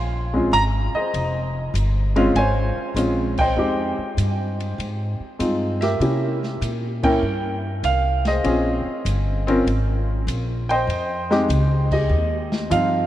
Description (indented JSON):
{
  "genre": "jazz piano trio",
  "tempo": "99 BPM",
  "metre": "4/4",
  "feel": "swing 68% on 8ths",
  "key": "F minor",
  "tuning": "A4 = 440 Hz",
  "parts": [
    { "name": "warm upright piano", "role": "melody", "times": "0.0-13.1 s", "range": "F3 to C6", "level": "-21 LUFS", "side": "equal", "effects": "none" },
    { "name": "upright bass", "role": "bass", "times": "0.0-13.1 s", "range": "F1 to C3", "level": "-23 LUFS", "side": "equal", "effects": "none" },
    { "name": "open jazz drum kit", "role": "drums", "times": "0.3-12.9 s", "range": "crash cymbal, hi-hat, kick drum, ride cymbal, snare drum", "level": "-32 LUFS", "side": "left 1 dB", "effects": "none" }
  ],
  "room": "moderate cathedral reverb, RT60 5.5 s",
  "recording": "in a vast, echoing space",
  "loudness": "-19 LUFS",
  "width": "side -13 dB against mid",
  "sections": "0.0-13.1 A section",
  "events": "band accent 3.3-3.6, 6.9-7.2, 11.8-12.1",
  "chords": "0.0 Fm9; 6.0 C7b9; 8.4 Bbm9; 10.9 Fm9",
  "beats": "0.54 | 1.14 1.75 2.36 2.97 | 3.58 4.18 4.79 5.40 | 6.01 6.62 7.22 7.83 | 8.44 9.05 9.66 10.27 | 10.88 11.49 12.10 12.71"
}